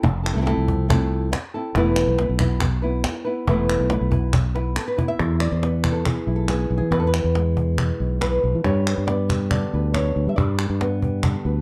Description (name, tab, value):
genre	flamenco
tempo	139 BPM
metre	4/4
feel	straight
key	unclear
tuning	A4 = 441 Hz
part	flamenco guitar	melody	0.0-11.6 s	B2 to E5	-26 LUFS	equal	none
part	fretless electric bass	bass	0.0-11.6 s	E1 to G3	-24 LUFS	equal	none
part	cajon	percussion	0.0-11.5 s	none	-27 LUFS	equal	none
part	palmas hand claps	percussion	0.0-11.4 s	none	-32 LUFS	equal	none
room	little or no reverb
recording	dry, close 1970s-style studio recording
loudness	-22 LUFS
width	mono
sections	0.0-5.2 A section; 5.2-11.6 B section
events	drum fill 4.5-5.2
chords	0.0 Fmaj7; 1.8 Esus4; 5.2 E; 8.6 G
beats	| 0.04 0.47 0.90 1.33 | 1.75 2.19 2.62 3.04 | 3.47 3.90 4.33 4.76 | 5.20 5.63 6.06 6.49 | 6.92 7.35 7.78 8.22 | 8.65 9.08 9.51 9.94 | 10.38 10.81 11.24